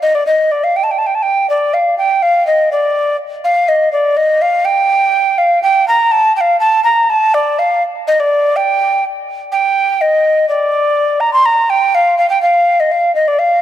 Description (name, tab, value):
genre	medieval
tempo	124 BPM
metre	2/4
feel	straight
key	G minor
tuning	A4 = 439 Hz
part	mellow hollow tenor recorder	solo	0.0-13.6 s	D5 to C6	-11 LUFS	equal	tape echo
room	moderate recital hall reverb, RT60 1.8 s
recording	close, detailed microphones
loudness	-11 LUFS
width	side -11 dB against mid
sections	0.0-1.7 A section; 1.7-9.5 A section; 9.5-13.6 B section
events	none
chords	none